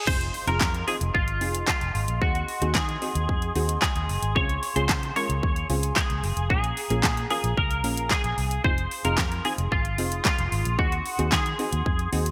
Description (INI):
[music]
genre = dance-pop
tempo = 112 BPM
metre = 4/4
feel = straight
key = unclear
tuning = A4 = 439 Hz
[part]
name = twelve-string electric guitar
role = melody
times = 0.0-12.1 s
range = F4 to Db5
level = -31 LUFS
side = equal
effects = ensemble chorus, digital delay
[part]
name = reverse cymbal and impact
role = sound effects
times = 0.0-2.2 s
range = none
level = -40 LUFS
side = equal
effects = none
[part]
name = wavetable chord stab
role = accompaniment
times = 0.1-12.3 s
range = Ab3 to Bb4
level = -35 LUFS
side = equal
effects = sidechain pumping
[part]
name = mellow hollow small flute group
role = sustained chords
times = 0.1-12.3 s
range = Ab4 to Eb6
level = -38 LUFS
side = equal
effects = sidechain pumping
[part]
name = vintage muted fingered electric bass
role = bass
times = 0.1-12.3 s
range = F1 to Eb3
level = -30 LUFS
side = equal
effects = sidechain pumping
[part]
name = pop drum kit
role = drums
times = 0.1-12.3 s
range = crash cymbal, handclaps, hi-hat, kick drum, snare drum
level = -29 LUFS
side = equal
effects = gated reverb
[part]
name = group handclap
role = percussion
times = 0.6-11.4 s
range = none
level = -41 LUFS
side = equal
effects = none
[sound]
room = light reverb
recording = bright 1980s-style digital production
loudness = -25 LUFS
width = mono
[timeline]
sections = 0.1-12.3 A section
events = impact 0.1-2.2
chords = 0.1 Fm7; 2.2 Ab7/Eb; 4.4 Dbmaj7; 6.5 Bbm7; 8.6 Fm7; 10.8 Ab7/Eb